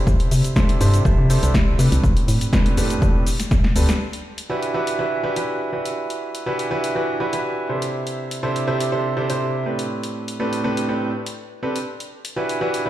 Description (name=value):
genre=piano house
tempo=122 BPM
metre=4/4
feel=straight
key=E minor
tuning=A4 = 438 Hz
part: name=bright grand piano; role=riff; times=0.0-12.9 s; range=A2 to C5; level=-22 LUFS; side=right 1 dB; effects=sidechain pumping, low-pass filter, ping-pong delay
part: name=organ-like FM bass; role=bass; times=0.0-3.9 s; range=A1 to C3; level=-18 LUFS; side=equal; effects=sidechain pumping
part: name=electronic kick drum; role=drums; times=0.1-3.6 s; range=none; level=-19 LUFS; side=equal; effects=small room ambience
part: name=house drum kit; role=drums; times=0.1-12.8 s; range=hi-hat, shaker, snare drum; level=-27 LUFS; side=left 1 dB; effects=small room ambience
room=light reverb, digital ambience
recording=played on a big sound system in a bare room, large studio reverb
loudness=-18 LUFS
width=side -13 dB against mid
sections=0.0-4.0 A section; 4.0-12.9 B section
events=drum fill 3.5-4.0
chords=0.1 Am11; 4.0 Em9; 7.9 C69; 9.9 Am11; 11.9 Em9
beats=| 0.07 0.56 1.05 1.54 | 2.04 2.53 3.02 3.51 | 4.00 4.50 4.99 5.48 | 5.97 6.46 6.96 7.45 | 7.94 8.43 8.92 9.41 | 9.91 10.40 10.89 11.38 | 11.87 12.37 12.86